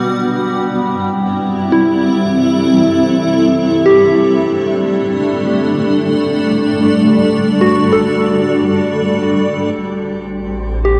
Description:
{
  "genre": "ambient",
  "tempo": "56 BPM",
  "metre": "3/4",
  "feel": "straight",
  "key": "unclear",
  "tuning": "A4 = 440 Hz",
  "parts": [
    { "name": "granular cloud pad", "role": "sustained chords", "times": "0.0-11.0 s", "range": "G3 to F#5", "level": "-16 LUFS", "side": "equal", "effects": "built-in reverb, shimmer reverb" },
    { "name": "soft synth bell", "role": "arpeggios", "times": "0.0-11.0 s", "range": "D4 to A4", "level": "-19 LUFS", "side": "equal", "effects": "chorus, phaser, tape echo, shimmer reverb" },
    { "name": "overtone-sweeping drone", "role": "drone", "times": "0.0-9.9 s", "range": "G3", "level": "-25 LUFS", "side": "equal", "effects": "chorus, built-in reverb" },
    { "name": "round analog bass", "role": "bass", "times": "9.8-11.0 s", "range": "A1", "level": "-22 LUFS", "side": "equal", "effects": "tube saturation" },
    { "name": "wind-like tuned noise texture", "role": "texture", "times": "10.2-11.0 s", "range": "C4 to C5", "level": "-37 LUFS", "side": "equal", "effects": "built-in reverb, shimmer reverb" }
  ],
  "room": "wet cathedral reverb, RT60 5.4 s",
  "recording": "worn, warbling old tape, cassette tape, warbly pitch drift",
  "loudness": "-14 LUFS",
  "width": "mono",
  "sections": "0.0-9.8 A section; 9.8-11.0 B section",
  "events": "none",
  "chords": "0.1 Gsus2; 9.8 Am7"
}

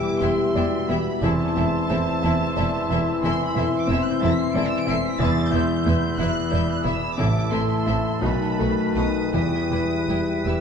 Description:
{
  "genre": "classical, romantic movement for piano and orchestra",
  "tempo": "53-62 BPM (dotted quarters)",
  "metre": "12/8",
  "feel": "rubato",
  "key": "E minor",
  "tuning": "A4 = 440 Hz",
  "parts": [
    { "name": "clear baby grand piano", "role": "melody", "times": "0.0-10.6 s", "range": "A1 to E5", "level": "-25 LUFS", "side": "left 1 dB", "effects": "none" },
    { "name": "rich symphonic violin section", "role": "melody", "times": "0.0-10.6 s", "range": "A5 to D7", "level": "-32 LUFS", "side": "right 2 dB", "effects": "none" },
    { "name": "bright large flute ensemble", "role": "second line", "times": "0.0-10.6 s", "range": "G5 to C6", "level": "-33 LUFS", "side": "left 1 dB", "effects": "none" },
    { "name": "mellow clarinet", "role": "second line", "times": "0.0-10.6 s", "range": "E4 to F#4", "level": "-32 LUFS", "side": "left 3 dB", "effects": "none" },
    { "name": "warm oboe", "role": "second line", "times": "0.0-10.6 s", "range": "B4 to E5", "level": "-34 LUFS", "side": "right 2 dB", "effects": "none" },
    { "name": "mellow bassoon", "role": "accompaniment", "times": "0.0-10.6 s", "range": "D#3 to E3", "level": "-32 LUFS", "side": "right 1 dB", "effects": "none" },
    { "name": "dark French horn section", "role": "sustained chords", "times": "0.0-10.6 s", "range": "G3 to G4", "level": "-28 LUFS", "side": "left 5 dB", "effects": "none" },
    { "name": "warm studio violin section", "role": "second line", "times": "0.2-10.6 s", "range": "F#4 to E5", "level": "-35 LUFS", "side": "left 3 dB", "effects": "none" },
    { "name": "clear symphonic viola section", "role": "accompaniment", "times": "0.2-10.5 s", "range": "G3 to E4", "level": "-33 LUFS", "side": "equal", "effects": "none" },
    { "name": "rich symphonic cello section", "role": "bass", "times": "0.2-10.5 s", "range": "E2 to B2", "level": "-30 LUFS", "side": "right 3 dB", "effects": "none" },
    { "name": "rich symphonic double bass section", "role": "bass", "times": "0.2-10.5 s", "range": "E1 to B1", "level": "-28 LUFS", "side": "right 4 dB", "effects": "none" }
  ],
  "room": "moderate scoring stage reverb, RT60 1.5 s",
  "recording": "dark, warm production",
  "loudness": "-20 LUFS",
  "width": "side -6 dB against mid",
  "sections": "0.0-10.6 A section",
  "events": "none",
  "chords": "0.0 Em; 1.2 Am/E; 5.2 Em; 7.2 Am; 8.2 B7; 9.3 Em"
}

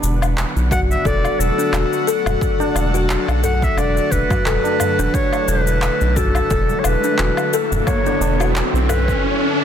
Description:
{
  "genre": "organic downtempo",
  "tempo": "88 BPM",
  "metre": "4/4",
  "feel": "swing 55% on 16ths",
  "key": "unclear",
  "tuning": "A4 = 438 Hz",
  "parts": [
    { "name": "airy breathy pad", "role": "sustained chords", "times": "0.0-9.6 s", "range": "D3 to B4", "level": "-26 LUFS", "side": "left 1 dB", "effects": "chorus, sidechain pumping" },
    { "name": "round analog bass", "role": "bass", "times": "0.0-9.1 s", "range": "E1 to B1", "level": "-19 LUFS", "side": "equal", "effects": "tube saturation, sidechain pumping" },
    { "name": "electronic cabasa, woodblock and handclaps", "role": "drums", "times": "0.0-9.2 s", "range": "none", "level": "-26 LUFS", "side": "left 2 dB", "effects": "overdrive, small room reverb" },
    { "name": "tabla", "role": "percussion", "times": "0.0-9.2 s", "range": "none", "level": "-30 LUFS", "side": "right 3 dB", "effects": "none" },
    { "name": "drifting glass-harmonics texture", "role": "texture", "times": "0.1-9.2 s", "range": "D4 to F#5", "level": "-30 LUFS", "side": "left 4 dB", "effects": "chorus, built-in reverb" },
    { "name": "warm clarinet", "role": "melody", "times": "0.7-9.2 s", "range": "A4 to F#5", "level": "-22 LUFS", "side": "equal", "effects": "tape echo" },
    { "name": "kalimba", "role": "arpeggios", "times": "0.7-9.2 s", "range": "D4 to A4", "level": "-23 LUFS", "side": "left 4 dB", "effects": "tape echo" },
    { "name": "electronic kick drum", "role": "drums", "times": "0.7-9.2 s", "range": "none", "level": "-22 LUFS", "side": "equal", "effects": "overdrive, small room reverb" },
    { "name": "riser", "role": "sound effects", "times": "6.7-9.6 s", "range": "none", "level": "-23 LUFS", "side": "right 2 dB", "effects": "none" }
  ],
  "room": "light reverb",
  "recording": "dense, heavily limited modern master",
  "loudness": "-15 LUFS",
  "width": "side -9 dB against mid",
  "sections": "0.0-9.6 A section",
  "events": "riser 6.7-9.6",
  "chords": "0.0 D/E"
}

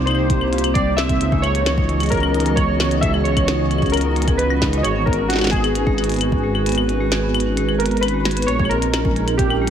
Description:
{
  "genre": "IDM",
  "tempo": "132 BPM",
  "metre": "4/4",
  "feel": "straight",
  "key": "unclear",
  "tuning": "A4 = 440 Hz",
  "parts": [
    { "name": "warbly lo-fi synth keys", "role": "melody", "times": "0.0-9.7 s", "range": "Gb4 to E5", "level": "-23 LUFS", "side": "equal", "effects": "chorus, vintage 12-bit sampler grit, tape echo, shimmer reverb" },
    { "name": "warbly tape-like pad", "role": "sustained chords", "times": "0.0-9.7 s", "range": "Fb3 to Eb5", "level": "-25 LUFS", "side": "right 2 dB", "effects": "chorus, built-in reverb, shimmer reverb" },
    { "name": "dark detuned saw bass", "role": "bass", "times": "0.0-9.7 s", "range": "Ab1 to Db2", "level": "-21 LUFS", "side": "equal", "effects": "none" },
    { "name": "vibraphone with medium hard mallets", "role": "arpeggios", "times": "0.1-9.7 s", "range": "G3 to Ab4", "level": "-24 LUFS", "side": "right 2 dB", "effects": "vintage 12-bit sampler grit, tape echo, shimmer reverb" },
    { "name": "glitchy drum kit", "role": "drums", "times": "0.1-9.7 s", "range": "claves, hi-hat, snare drum", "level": "-24 LUFS", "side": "left 2 dB", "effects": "none" },
    { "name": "electronic kick drum", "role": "drums", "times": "0.3-9.5 s", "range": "none", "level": "-22 LUFS", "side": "equal", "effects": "none" },
    { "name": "bubbling stepped-filter texture", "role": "texture", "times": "8.5-9.7 s", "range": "Eb4", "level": "-31 LUFS", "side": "left 1 dB", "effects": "chorus, built-in reverb" }
  ],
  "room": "light reverb",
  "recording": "none",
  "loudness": "-16 LUFS",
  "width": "side -9 dB against mid",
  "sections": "0.0-9.7 A section",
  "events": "kick drops out 6.7-8.5; drum fill 8.3",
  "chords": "0.0 Cm9; 1.2 Dbm11; 4.8 Abm7; 8.5 Bbm11"
}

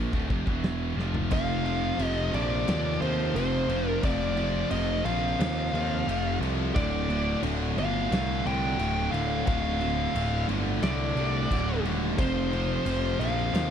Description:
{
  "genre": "heavy metal",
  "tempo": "88 BPM",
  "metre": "4/4",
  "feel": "straight",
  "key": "unclear",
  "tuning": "A4 = 440 Hz",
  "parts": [
    { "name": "scooped high-gain guitar", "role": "riff", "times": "0.0-13.7 s", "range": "D2 to F3", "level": "-35 LUFS", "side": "left 12 dB", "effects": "distortion" },
    { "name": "scooped high-gain guitar", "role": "riff", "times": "0.0-13.7 s", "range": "D2 to F3", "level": "-34 LUFS", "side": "right 13 dB", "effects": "distortion" },
    { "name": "fuzz picked electric bass", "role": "bass", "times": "0.0-13.7 s", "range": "D1 to Eb2", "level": "-29 LUFS", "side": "equal", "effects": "overdrive" },
    { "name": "big rock drum kit", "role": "drums", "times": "0.1-13.7 s", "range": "crash cymbal, hi-hat, kick drum, snare drum, toms", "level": "-34 LUFS", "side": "equal", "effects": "none" },
    { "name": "high-gain lead guitar", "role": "melody", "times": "1.3-13.7 s", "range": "C5 to G5", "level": "-31 LUFS", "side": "left 1 dB", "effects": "distortion, slapback echo" },
    { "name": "distorted electric guitar", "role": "riff", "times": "1.3-13.7 s", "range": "D2 to F3", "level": "-33 LUFS", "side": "equal", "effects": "overdrive" }
  ],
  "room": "small room ambience",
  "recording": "dry, close 1970s-style studio recording",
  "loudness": "-25 LUFS",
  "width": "side -8 dB against mid",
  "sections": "0.0-1.3 A section; 1.3-13.7 B section",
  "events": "drum fill 1.0-1.3; half time 1.3-13.7",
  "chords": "0.0 Dm; 1.3 F5; 6.8 Dm; 12.2 F5"
}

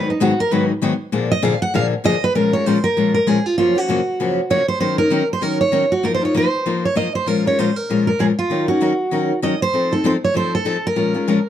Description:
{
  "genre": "jazz",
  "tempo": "195 BPM",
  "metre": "4/4",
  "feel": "swing 59% on 8ths",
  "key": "Bb minor",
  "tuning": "A4 = 440 Hz",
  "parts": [
    { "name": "picked steel-string acoustic guitar", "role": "melody", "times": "0.0-11.5 s", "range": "Eb4 to Gb5", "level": "-19 LUFS", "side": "right 2 dB", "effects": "none" },
    { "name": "picked steel-string acoustic guitar", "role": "accompaniment", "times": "0.0-11.4 s", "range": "Gb2 to Bb4", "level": "-18 LUFS", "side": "left 3 dB", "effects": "none" }
  ],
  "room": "moderate studio reverb, RT60 0.8 s",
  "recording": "dark, warm production",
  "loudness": "-16 LUFS",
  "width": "side -10 dB against mid",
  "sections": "0.0-2.3 A section; 2.3-11.5 B section",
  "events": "steel-string acoustic guitar solo 0.0-2.3",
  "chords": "0.0 Abm7; 1.1 Bb7; 2.3 Bbm7; 3.6 Gbmaj7; 4.8 Ebm7; 6.0 F7sus4; 7.3 Bbm7; 8.5 Ebm7; 9.7 F7; 11.0 Bbm7"
}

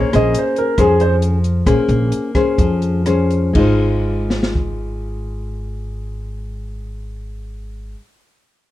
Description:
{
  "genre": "bossa nova",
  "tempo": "120-141 BPM",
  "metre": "4/4",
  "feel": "straight",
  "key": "Ab major",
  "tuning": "A4 = 440 Hz",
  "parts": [
    { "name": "warm concert grand piano", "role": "melody", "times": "0.0-1.1 s", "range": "Ab4 to Eb5", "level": "-18 LUFS", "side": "right 3 dB", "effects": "none" },
    { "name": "nylon-string guitar", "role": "accompaniment", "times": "0.0-8.0 s", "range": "F3 to C5", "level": "-18 LUFS", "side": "left 3 dB", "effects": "none" },
    { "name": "upright bass", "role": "bass", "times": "0.1-7.9 s", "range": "Ab1 to F2", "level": "-20 LUFS", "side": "equal", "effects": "none" },
    { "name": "open jazz drum kit", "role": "drums", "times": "0.1-4.7 s", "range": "crash cymbal, hi-hat, kick drum, rim click, snare drum", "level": "-21 LUFS", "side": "equal", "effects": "none" }
  ],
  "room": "light reverb",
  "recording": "dark, warm production",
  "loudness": "-14 LUFS",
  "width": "side -14 dB against mid",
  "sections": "0.0-3.5 A section; 3.5-7.6 B section",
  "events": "slowing down 0.0-3.5; grand piano solo 0.0-3.5",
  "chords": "0.0 Bbm9; 3.5 Ab6"
}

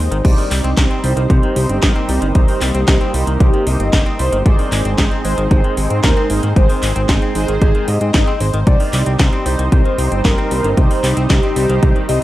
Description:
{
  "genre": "italo disco",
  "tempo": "114 BPM",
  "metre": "4/4",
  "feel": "straight",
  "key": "C minor",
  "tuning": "A4 = 439 Hz",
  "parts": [
    { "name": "wide unison lead", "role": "melody", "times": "0.0-12.2 s", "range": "G4 to Eb5", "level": "-22 LUFS", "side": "equal", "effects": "wide subtle chorus, tape echo" },
    { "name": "lush unison pad", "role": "sustained chords", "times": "0.0-12.2 s", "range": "G3 to Eb4", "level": "-24 LUFS", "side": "equal", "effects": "chorus" },
    { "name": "direct-recorded clean electric guitar", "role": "arpeggios", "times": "0.0-12.2 s", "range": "C3 to Eb4", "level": "-27 LUFS", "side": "left 1 dB", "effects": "analog delay" },
    { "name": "fat analog bass", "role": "bass", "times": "0.0-12.2 s", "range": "G1 to Ab2", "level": "-17 LUFS", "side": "equal", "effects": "none" },
    { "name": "house drum kit", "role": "drums", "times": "0.1-12.2 s", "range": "crash cymbal, handclaps, hi-hat, snare drum", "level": "-22 LUFS", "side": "equal", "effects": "studio reverb" },
    { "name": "mellow synth brass", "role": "stabs", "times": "0.2-12.2 s", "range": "C4 to C5", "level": "-24 LUFS", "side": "right 3 dB", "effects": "chorus, phaser, vintage 12-bit sampler grit" },
    { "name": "electronic kick drum", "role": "drums", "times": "0.2-11.9 s", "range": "none", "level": "-14 LUFS", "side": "equal", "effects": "studio reverb" }
  ],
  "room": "little or no reverb",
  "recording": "dry, gritty hardware recording",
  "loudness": "-12 LUFS",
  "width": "side -15 dB against mid",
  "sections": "0.0-12.2 A section",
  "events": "none",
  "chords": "0.2 Cm; 4.5 Ab; 8.7 Cm"
}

